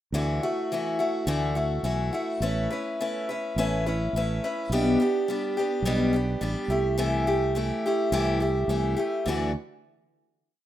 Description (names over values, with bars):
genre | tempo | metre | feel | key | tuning
folk rock and heartland rock | 105 BPM | 4/4 | straight | D major | A4 = 442 Hz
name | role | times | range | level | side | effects
picked steel-string acoustic guitar | accompaniment | 0.1-9.5 s | B2 to B4 | -25 LUFS | left 1 dB | plate reverb
fingered electric bass | bass | 0.1-9.5 s | A1 to D2 | -28 LUFS | right 1 dB | none
room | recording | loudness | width
moderate studio reverb, RT60 0.5 s | rough home demo mix | -24 LUFS | side -12 dB against mid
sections
0.1-9.3 verse; 9.3-10.7 final chord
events
none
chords
0.1 Dadd9; 2.4 Aadd9; 4.7 G/B; 6.7 C6; 9.3 Dadd9